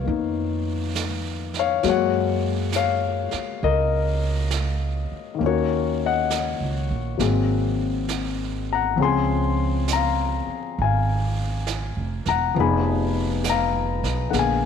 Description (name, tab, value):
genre	jazz ballad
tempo	67 BPM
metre	4/4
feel	swing 66% on 8ths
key	unclear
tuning	A4 = 440 Hz
part	warm grand piano	accompaniment	0.0-14.7 s	D3 to C6	-23 LUFS	left 9 dB	none
part	upright bass	bass	0.0-14.7 s	Fb1 to Gb2	-25 LUFS	right 3 dB	none
part	jazz brush drum kit	drums	0.1-14.7 s	brushed snare drum, hi-hat, snare drum	-33 LUFS	right 10 dB	none
room	light reverb, small room reverb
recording	1960s-style stereo with parts hard left and right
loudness	-21 LUFS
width	side -7 dB against mid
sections	0.0-14.7 A section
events	none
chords	0.0 Db13; 1.8 Gbmaj9; 5.4 Ebm7; 7.2 Ab9; 9.0 Dbmaj7; 12.5 Fm7b5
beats	0.07 0.96 | 1.85 2.74 3.63 4.52 | 5.41 6.30 7.20 8.09 | 8.98 9.87 10.77 11.66 | 12.55 13.44 14.33